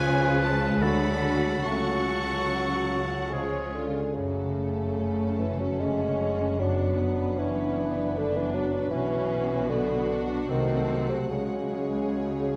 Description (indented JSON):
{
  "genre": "classical, slow romantic movement for symphony orchestra",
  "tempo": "70-82 BPM",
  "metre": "3/4",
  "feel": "rubato",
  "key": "F# minor",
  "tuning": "A4 = 441 Hz",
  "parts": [
    { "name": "rich studio violin section", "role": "melody", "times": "0.0-12.6 s", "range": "F#5 to C#6", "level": "-42 LUFS", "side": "equal", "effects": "none" },
    { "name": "clear oboe", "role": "second line", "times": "0.0-3.8 s", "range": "G#4 to B4", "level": "-34 LUFS", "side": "equal", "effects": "none" },
    { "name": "mellow hollow silver concert flute", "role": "second line", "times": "0.0-3.7 s", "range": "G#5 to C#6", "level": "-37 LUFS", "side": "equal", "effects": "none" },
    { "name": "warm studio violin section", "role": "second line", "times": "0.0-12.6 s", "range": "G#3 to F#5", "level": "-40 LUFS", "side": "equal", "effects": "none" },
    { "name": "mellow bassoon", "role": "accompaniment", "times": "0.0-12.6 s", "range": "C3 to G#3", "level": "-32 LUFS", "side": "equal", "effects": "none" },
    { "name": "warm studio viola section", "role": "accompaniment", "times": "0.0-12.6 s", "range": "F#3 to F#4", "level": "-36 LUFS", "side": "equal", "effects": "none" },
    { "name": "concert harp", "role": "arpeggios", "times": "0.0-12.6 s", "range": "F#2 to C#5", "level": "-36 LUFS", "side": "equal", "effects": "none" },
    { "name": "mellow tuba", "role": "bass", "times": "0.0-3.9 s", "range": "C#2 to D2", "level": "-35 LUFS", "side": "equal", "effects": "none" },
    { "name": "rich studio cello section", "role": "bass", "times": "0.0-12.6 s", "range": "C#2 to D3", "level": "-37 LUFS", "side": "equal", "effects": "none" },
    { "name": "rich studio double bass section", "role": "bass", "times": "0.0-12.6 s", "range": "F#1 to D2", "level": "-39 LUFS", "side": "equal", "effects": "none" },
    { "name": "clear trombone section", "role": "sustained chords", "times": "0.8-3.6 s", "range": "C#3 to F#3", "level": "-42 LUFS", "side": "equal", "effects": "none" },
    { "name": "warm French horn section", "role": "sustained chords", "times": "0.8-12.6 s", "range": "G#3 to G#4", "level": "-36 LUFS", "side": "equal", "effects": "none" }
  ],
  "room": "wet scoring stage reverb, RT60 1.6 s",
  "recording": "none",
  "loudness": "-27 LUFS",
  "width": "mono",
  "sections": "0.0-4.2 A section; 4.2-12.6 B section",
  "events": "none",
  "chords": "0.0 C#7; 0.8 D6; 1.6 F#m/C#; 3.3 C#; 4.2 F#m; 6.6 Bm/F#; 8.9 Bm; 10.5 Cdim7; 11.3 C#sus4",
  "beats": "0.03 0.80 | 1.63 2.48 3.32 | 4.16 4.99 5.80 | 6.60 7.38 8.17 | 8.92 9.69 10.48 | 11.30 12.15"
}